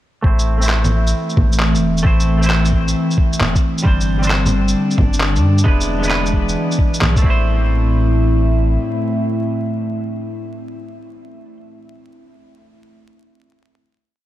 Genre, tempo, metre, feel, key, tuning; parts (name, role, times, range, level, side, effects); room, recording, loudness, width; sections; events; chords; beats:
future garage; 133 BPM; 4/4; swing 67% on 16ths; A minor; A4 = 440 Hz
semi-hollow electric guitar; accompaniment; 0.2-11.6 s; G3 to C5; -24 LUFS; right 1 dB; sidechain pumping, low-pass filter, ping-pong delay
warbly tape-like pad; sustained chords; 0.2-11.5 s; A2 to E5; -20 LUFS; equal; chorus, built-in reverb, sidechain pumping
warm sub bass; bass; 0.2-8.8 s; E1 to G2; -17 LUFS; equal; sidechain pumping
electronic kick drum; drums; 0.2-7.4 s; -15 LUFS; equal
electronic shaker, handclaps and bongos; drums; 0.4-7.2 s; -21 LUFS; equal
drifting glass-harmonics texture; texture; 4.5-7.5 s; D4 to D5; -28 LUFS; left 1 dB; chorus, built-in reverb
light reverb; vinyl crackle; -14 LUFS; side -14 dB against mid
0.2-7.5 groove; 7.5-11.1 final hit
filter sweep on clean electric guitar 0.2-7.5
0.2 Am; 3.9 Gsus4; 5.7 E; 7.2 Am
| 0.24 0.70 1.15 1.60 | 2.05 2.50 2.95 3.40 | 3.85 4.30 4.76 5.21 | 5.66 6.11 6.56 7.01 | 7.46 7.91 8.37 8.82 | 9.27 9.72 10.17 10.62